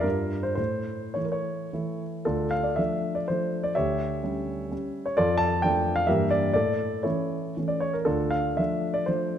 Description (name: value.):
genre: classical, romantic triple-time dance for piano with dotted rhythms.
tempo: 99-138 BPM.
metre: 3/4.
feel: rubato.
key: D minor.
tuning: A4 = 442 Hz.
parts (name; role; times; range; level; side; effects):
warm grand piano; solo; 0.0-9.4 s; D2 to A5; -24 LUFS; equal; none.
room: moderate scoring stage reverb, RT60 1.8 s.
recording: none.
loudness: -24 LUFS.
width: side -9 dB against mid.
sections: 0.0-2.3 A section; 2.3-9.4 A section.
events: none.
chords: 0.0 Gm7; 0.6 A; 2.3 Dm; 3.8 C#dim/D; 5.2 Dm/F; 6.1 Em7b5/G; 6.5 A; 8.1 Dm.